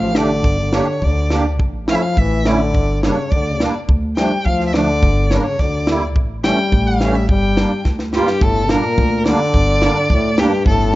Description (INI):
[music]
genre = klezmer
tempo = 106 BPM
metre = 2/4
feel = straight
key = G dorian sharp4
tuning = A4 = 440 Hz
[part]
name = clear violin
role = melody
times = 0.0-10.9 s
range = G4 to G5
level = -21 LUFS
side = equal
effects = none
[part]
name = breathy trombone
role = second line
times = 0.0-11.0 s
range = G2 to G3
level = -21 LUFS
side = left 2 dB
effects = none
[part]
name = upright bass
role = bass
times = 0.0-11.0 s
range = G1 to D2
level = -19 LUFS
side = equal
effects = none
[part]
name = musette accordion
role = accompaniment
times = 0.1-11.0 s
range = E3 to G4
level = -21 LUFS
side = right 2 dB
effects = none
[part]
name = crisp fusion drum kit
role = drums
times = 0.1-10.8 s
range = kick drum, snare drum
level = -19 LUFS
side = equal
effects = none
[sound]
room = light reverb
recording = dark, warm production, nothing above 7.6 kHz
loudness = -14 LUFS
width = side -17 dB against mid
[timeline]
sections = 0.0-8.4 A section; 8.4-11.0 B section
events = speeding up 0.0-11.0; drum fill 7.9-8.4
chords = 0.4 Gm; 1.6 A; 2.7 Gm; 3.9 Dm; 5.0 Gm; 6.2 A; 7.3 Gm